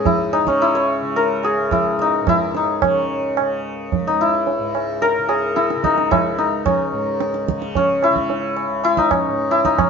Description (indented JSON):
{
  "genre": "indian classical, Hindustani",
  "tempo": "109 BPM",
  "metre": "7/4",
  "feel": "straight",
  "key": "C# raga shivaranjani",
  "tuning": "A4 = 439 Hz",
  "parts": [
    { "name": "santur", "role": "melody", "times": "0.0-9.9 s", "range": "C#4 to C#5", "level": "-17 LUFS", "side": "left 2 dB", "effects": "none" },
    { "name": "tanpura", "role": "drone", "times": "0.0-9.9 s", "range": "C#2 to C#3", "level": "-29 LUFS", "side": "left 2 dB", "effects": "none" },
    { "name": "tabla", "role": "percussion", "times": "0.1-9.9 s", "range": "none", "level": "-22 LUFS", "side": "right 7 dB", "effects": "none" }
  ],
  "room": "moderate stone room reverb, RT60 1.1 s",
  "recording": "band playing live in one room, nothing above 7.5 kHz",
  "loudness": "-16 LUFS",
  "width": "side -6 dB against mid",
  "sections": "0.0-9.9 A section",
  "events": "none",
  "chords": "none",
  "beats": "0.05 0.61 1.16 1.72 2.27 | 2.82 3.38 3.92 4.47 5.02 5.57 6.12 | 6.66 7.21 7.75 8.30 8.84 9.38"
}